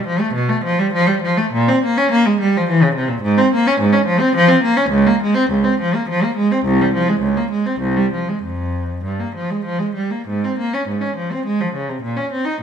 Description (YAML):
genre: classical, baroque-style suite movement for unaccompanied cello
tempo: 94-108 BPM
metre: 3/4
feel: rubato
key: F minor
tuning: A4 = 441 Hz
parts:
  - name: rich cello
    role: solo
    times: 0.0-12.6 s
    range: C2 to Eb4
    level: -15 LUFS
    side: equal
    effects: none
room: moderate stone room reverb, RT60 1.1 s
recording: none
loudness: -15 LUFS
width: side -8 dB against mid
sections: 0.0-10.3 A section; 10.3-12.6 A section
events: none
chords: none